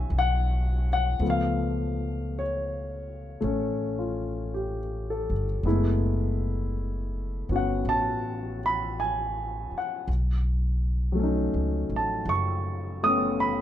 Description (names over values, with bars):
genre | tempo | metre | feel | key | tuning
jazz ballad | 54 BPM | 4/4 | swing 69% on 8ths | unclear | A4 = 439 Hz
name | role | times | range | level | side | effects
warm grand piano | accompaniment | 0.0-13.6 s | D#3 to D#6 | -27 LUFS | left 1 dB | none
upright bass | bass | 0.0-13.6 s | F#1 to C#2 | -28 LUFS | equal | none
room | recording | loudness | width
little or no reverb | close, detailed microphones, lossy compression artefacts | -25 LUFS | side -11 dB against mid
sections
0.0-13.6 A section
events
none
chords
0.0 G#m7; 1.2 C#aug7; 5.7 F#m11; 10.1 B9